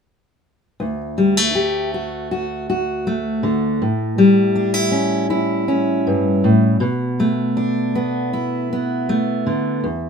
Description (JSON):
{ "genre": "acoustic folk duo or small band", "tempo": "80 BPM", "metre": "4/4", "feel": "straight", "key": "D major", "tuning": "A4 = 441 Hz", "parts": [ { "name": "fingerpicked steel-string acoustic guitar", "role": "solo", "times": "0.8-10.1 s", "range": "D2 to G4", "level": "-16 LUFS", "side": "equal", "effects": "none" } ], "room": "moderate studio reverb, RT60 0.6 s", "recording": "minimal, uncompressed stereo recording", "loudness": "-16 LUFS", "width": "side -6 dB against mid", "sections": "0.8-10.1 A section", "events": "none", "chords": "0.8 D; 3.8 A7; 6.8 Bm7" }